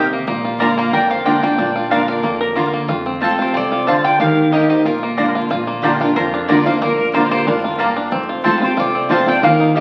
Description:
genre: bluegrass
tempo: 184 BPM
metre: 4/4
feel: straight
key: Bb major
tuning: A4 = 440 Hz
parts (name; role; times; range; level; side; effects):
- bluegrass banjo; melody; 0.0-9.8 s; Bb3 to Bb4; -24 LUFS; equal; none
- mandolin; melody; 0.0-9.8 s; G4 to Bb5; -22 LUFS; equal; none
- dark fiddle; second line; 0.0-9.8 s; D4 to F5; -26 LUFS; equal; none
- picked steel-string acoustic guitar; accompaniment; 0.0-9.8 s; F2 to G4; -21 LUFS; equal; none
- mandolin; stabs; 0.0-9.8 s; Bb3 to Bb5; -24 LUFS; equal; none
- upright bass; bass; 0.0-9.8 s; F1 to Eb2; -34 LUFS; equal; none
room: wet large studio reverb, RT60 1.3 s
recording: very old 78 rpm record, vinyl crackle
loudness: -16 LUFS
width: mono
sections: 0.0-5.5 A section; 5.5-9.8 A section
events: none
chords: 0.3 Bb; 2.9 F; 4.2 Eb; 4.9 Bb; 8.1 F

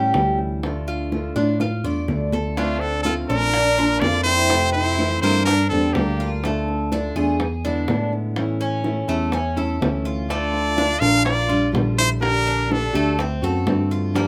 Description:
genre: latin, Cuban son and guajira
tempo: 124 BPM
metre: 4/4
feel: straight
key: D minor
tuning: A4 = 437 Hz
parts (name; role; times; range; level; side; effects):
- nylon-string guitar; accompaniment; 0.0-14.3 s; C3 to A4; -28 LUFS; equal; none
- Cuban tres; arpeggios; 0.0-14.3 s; A3 to D5; -29 LUFS; equal; none
- overdriven tine electric piano; bass; 0.0-14.3 s; Bb1 to A2; -26 LUFS; equal; none
- bongos; percussion; 0.1-14.3 s; none; -30 LUFS; equal; none
- brilliant trumpet; melody; 2.6-6.3, 10.3-13.2 s; F4 to F5; -23 LUFS; equal; none
- dark studio violin section; second line; 2.6-6.3, 10.3-13.2 s; A3 to A4; -32 LUFS; equal; none
room: moderate studio ambience, RT60 0.5 s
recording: none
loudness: -21 LUFS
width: mono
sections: 0.0-2.6 A section; 2.6-14.3 A section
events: drum fill 1.6-2.6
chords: 0.0 A7; 0.6 Dm; 2.6 Dm7; 3.5 Bb; 4.5 Fmaj7; 5.5 Gmadd9; 6.4 Dm; 7.4 E7; 8.4 A; 10.3 Dm; 11.3 Bb6; 12.2 Gmadd9/Bb; 13.2 D7

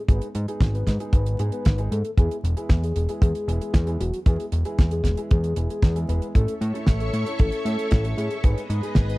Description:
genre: italo disco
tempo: 115 BPM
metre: 4/4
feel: straight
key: E major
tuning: A4 = 440 Hz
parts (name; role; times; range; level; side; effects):
- soft octave-layered synth lead; melody; 0.1-9.2 s; F#4 to B4; -31 LUFS; left 2 dB; chorus, tremolo, tape echo
- dark grand piano; stabs; 0.1-9.2 s; G#3 to A4; -34 LUFS; right 1 dB; low-pass filter
- fat analog bass; bass; 0.1-9.2 s; E1 to A2; -24 LUFS; equal; tube saturation
- damped 70s drum kit; drums; 0.1-9.2 s; hi-hat, snare drum; -26 LUFS; right 1 dB; none
- kick drum; drums; 0.1-9.1 s; none; -18 LUFS; equal; none
- string machine, full ensemble; sustained chords; 6.3-9.2 s; G#4 to C#6; -32 LUFS; equal; ensemble chorus
room: small room reverb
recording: dry, close 1970s-style studio recording, vinyl crackle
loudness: -20 LUFS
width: side -20 dB against mid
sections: 0.0-9.2 A section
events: none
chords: 0.1 G#m; 2.2 E; 6.3 A; 8.4 G#m

